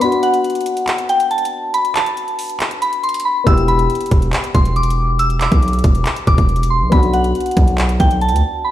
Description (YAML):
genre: hip hop, trap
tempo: 139 BPM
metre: 4/4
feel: half-time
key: E minor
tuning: A4 = 440 Hz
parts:
  - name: soft synth bell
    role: melody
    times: 0.0-8.7 s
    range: F#5 to E6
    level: -18 LUFS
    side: left 1 dB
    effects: chorus, digital delay
  - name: dark concert grand piano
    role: accompaniment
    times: 0.0-8.7 s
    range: B3 to G4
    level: -23 LUFS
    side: left 3 dB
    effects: none
  - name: trap drum kit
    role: drums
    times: 0.0-8.4 s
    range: handclaps, hi-hat, kick drum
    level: -17 LUFS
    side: equal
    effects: none
  - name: distorted 808-style bass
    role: bass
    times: 3.5-8.4 s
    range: E1 to D2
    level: -16 LUFS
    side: equal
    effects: distortion
room: light reverb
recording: played on a big sound system in a bare room, stone room reverb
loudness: -13 LUFS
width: side -12 dB against mid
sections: 0.0-8.7 A section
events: break 0.0-3.5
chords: 0.0 Bm; 3.5 Em; 6.9 Bm